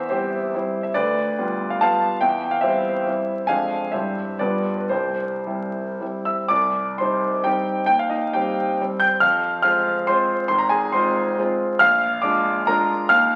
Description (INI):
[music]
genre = classical, romantic triple-time dance for piano with dotted rhythms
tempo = 106-153 BPM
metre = 3/4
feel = rubato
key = C major, C minor from 6.5 s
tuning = A4 = 440 Hz
[part]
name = clear grand piano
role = solo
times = 0.0-13.4 s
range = Ab1 to G6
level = -21 LUFS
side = equal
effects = none
[sound]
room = wet recital hall reverb, RT60 1.5 s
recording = very old 78 rpm record, vinyl crackle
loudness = -21 LUFS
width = mono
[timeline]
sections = 0.0-6.5 A section; 6.5-13.4 B section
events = none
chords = 0.0 C/E; 0.9 G7/D; 2.2 C/E; 3.5 Dm7b5/F; 3.9 C/G; 4.4 G7; 4.9 C; 6.5 Cm; 7.9 Cm/Eb; 9.2 Fm; 10.5 Fm/Ab; 11.8 Bb7